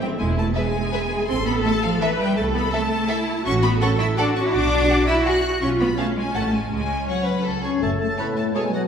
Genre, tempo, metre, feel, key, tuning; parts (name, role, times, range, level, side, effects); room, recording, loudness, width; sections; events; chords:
cinematic, playful, whimsical film cue; 166 BPM; 3/4; straight; A minor, F# minor from 3.4 s; A4 = 440 Hz
rich studio violin section; melody; 0.0-8.8 s; E5 to F#6; -29 LUFS; left 3 dB
clear studio viola section; accompaniment; 0.0-8.6 s; C4 to C#5; -26 LUFS; equal
rich studio cello section; bass; 0.0-8.1 s; F#2 to F#4; -23 LUFS; right 1 dB
clear studio double bass section; bass; 0.2-8.1 s; E1 to C#2; -26 LUFS; right 2 dB
rich studio violin section; second line; 0.6-8.6 s; G#4 to A5; -29 LUFS; left 2 dB
warm oboe; second line; 7.6-8.8 s; F#4 to C#5; -30 LUFS; equal
mellow French horn section; sustained chords; 7.6-8.9 s; F#3 to C#4; -24 LUFS; left 4 dB
mellow clarinet; second line; 7.8-8.9 s; A4; -32 LUFS; right 1 dB
mellow hollow large flute ensemble; second line; 7.8-8.9 s; C#5; -34 LUFS; equal
mellow bassoon; accompaniment; 8.2-8.9 s; A2 to B2; -28 LUFS; right 2 dB
wet scoring stage reverb, RT60 1.6 s; heard from further back in the room; -19 LUFS; side -7 dB against mid
0.0-7.8 A section; 7.8-8.9 B section
0.2 E; 1.3 A5; 2.4 Am/C; 3.4 F#m/A; 4.5 G#m7b5/B (rootless); 5.6 C#7/B; 6.3 F#m/A; 6.7 F#5/C#; 7.5 C#5; 7.8 F#m